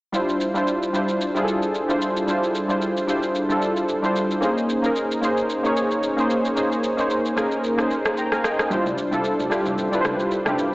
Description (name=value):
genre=amapiano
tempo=112 BPM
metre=4/4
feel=swing 55% on 16ths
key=D minor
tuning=A4 = 439 Hz
part: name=warm analog keys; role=accompaniment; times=0.1-10.7 s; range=G3 to Bb5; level=-20 LUFS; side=equal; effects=chorus
part: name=electronic shaker and rim click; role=drums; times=0.1-10.7 s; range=none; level=-29 LUFS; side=equal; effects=none
part: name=congas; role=percussion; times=8.7-10.6 s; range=none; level=-34 LUFS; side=left 1 dB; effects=none
room=moderate digital room reverb, RT60 1.0 s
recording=AM radio sound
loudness=-20 LUFS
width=side -21 dB against mid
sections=0.1-10.7 A section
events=none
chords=0.1 Dm11; 4.4 Bbm11; 8.7 Dm11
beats=| 0.14 0.68 1.21 1.75 | 2.28 2.82 3.35 3.89 | 4.42 4.96 5.50 6.03 | 6.57 7.10 7.64 8.18 | 8.71 9.25 9.78 10.32